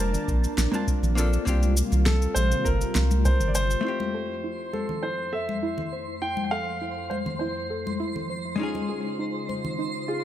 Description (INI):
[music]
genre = sunset chillout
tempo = 101 BPM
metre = 4/4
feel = straight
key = F major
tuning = A4 = 440 Hz
[part]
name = dark baby grand piano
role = melody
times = 0.0-10.2 s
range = F4 to G5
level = -30 LUFS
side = equal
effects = digital delay
[part]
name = hollow-body jazz guitar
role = accompaniment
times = 0.0-10.2 s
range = Ab3 to A5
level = -32 LUFS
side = left 3 dB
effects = auto-pan, ping-pong delay
[part]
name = lush unison pad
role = sustained chords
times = 0.0-10.2 s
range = F2 to A5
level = -34 LUFS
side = left 1 dB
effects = chorus, vintage 12-bit sampler grit
[part]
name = round analog bass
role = bass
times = 0.0-3.8 s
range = F1 to C2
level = -23 LUFS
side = equal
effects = none
[part]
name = electronic shaker and snare drum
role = drums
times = 0.1-3.8 s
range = none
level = -30 LUFS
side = equal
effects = studio ambience
[part]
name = congas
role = percussion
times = 0.1-9.8 s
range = none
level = -34 LUFS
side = left 4 dB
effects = none
[part]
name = electronic kick drum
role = drums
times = 0.3-3.4 s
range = none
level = -27 LUFS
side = equal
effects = studio ambience
[part]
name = soft round pluck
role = arpeggios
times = 3.8-10.2 s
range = Eb4 to C5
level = -34 LUFS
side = right 2 dB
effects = chorus, ping-pong delay
[part]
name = twinkling granular texture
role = texture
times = 4.3-10.2 s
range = C5 to C6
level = -36 LUFS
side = right 2 dB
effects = built-in reverb
[sound]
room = light reverb, digital ambience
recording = none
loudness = -24 LUFS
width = side -12 dB against mid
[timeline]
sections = 0.0-3.8 A section; 3.8-10.2 B section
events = filter sweep on analog synth pad 3.8-10.2; filter sweep on synth arpeggio sound 3.8-10.2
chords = 0.0 Bbmaj7; 1.5 C7sus4; 3.8 Fmaj7; 8.6 Dbmaj9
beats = 0.28 0.88 | 1.47 2.06 2.66 3.25 | 3.85 4.44 5.03 5.63 | 6.22 6.82 7.41 8.00 | 8.60 9.19 9.79